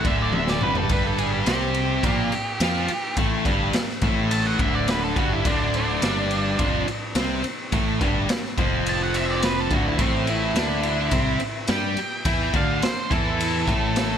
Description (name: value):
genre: blues rock power trio and southern rock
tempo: 106 BPM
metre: 4/4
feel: straight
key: unclear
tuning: A4 = 440 Hz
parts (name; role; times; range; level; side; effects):
- octave-fuzz lead guitar; melody; 0.0-14.2 s; C4 to A5; -28 LUFS; right 2 dB; distortion
- distorted electric guitar; riff; 0.0-14.2 s; D2 to G4; -24 LUFS; equal; overdrive, slapback echo
- growling picked electric bass; bass; 0.0-14.2 s; D1 to G2; -28 LUFS; equal; overdrive
- raw garage drum kit; drums; 0.0-14.1 s; kick drum, ride cymbal, snare drum, toms; -25 LUFS; equal; none
room: moderate lush hall reverb, RT60 2.3 s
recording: big arena sound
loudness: -20 LUFS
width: side -8 dB against mid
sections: 0.0-14.2 A section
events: drum fill 0.3-0.9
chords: 0.0 D5; 0.9 Gm11; 3.2 D5; 10.0 A5